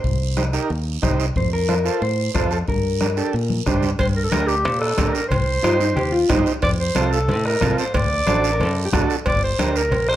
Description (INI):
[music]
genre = latin, cumbia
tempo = 182 BPM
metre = 4/4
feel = straight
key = G minor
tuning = A4 = 439 Hz
[part]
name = mellow electric guitar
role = second line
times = 0.0-9.2 s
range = Eb4 to C5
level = -23 LUFS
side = left 1 dB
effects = slapback echo
[part]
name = fingered electric bass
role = bass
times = 0.0-10.2 s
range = G1 to Bb2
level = -23 LUFS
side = equal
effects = none
[part]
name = bombo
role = percussion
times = 0.0-10.2 s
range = none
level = -25 LUFS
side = left 2 dB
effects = none
[part]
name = congas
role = percussion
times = 0.0-10.1 s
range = none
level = -28 LUFS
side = left 2 dB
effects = none
[part]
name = guiro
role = percussion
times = 0.0-10.2 s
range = none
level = -32 LUFS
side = right 8 dB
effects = none
[part]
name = combo organ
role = accompaniment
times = 0.4-9.8 s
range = C4 to C5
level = -25 LUFS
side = right 4 dB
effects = none
[part]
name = warm clarinet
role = melody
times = 4.0-10.2 s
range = G4 to D5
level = -22 LUFS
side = equal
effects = none
[part]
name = cowbell and timbales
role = percussion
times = 4.0-10.1 s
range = none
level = -29 LUFS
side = right 2 dB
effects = none
[sound]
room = moderate large studio reverb, RT60 0.9 s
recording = none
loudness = -17 LUFS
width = side -13 dB against mid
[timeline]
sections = 0.0-4.0 A section; 4.0-10.2 B section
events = clean electric guitar solo 0.0-4.0; drum fill 3.5-4.0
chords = 0.0 Cm; 1.4 F; 2.7 Gm; 5.3 Cm; 6.6 F; 7.9 D; 9.3 Gm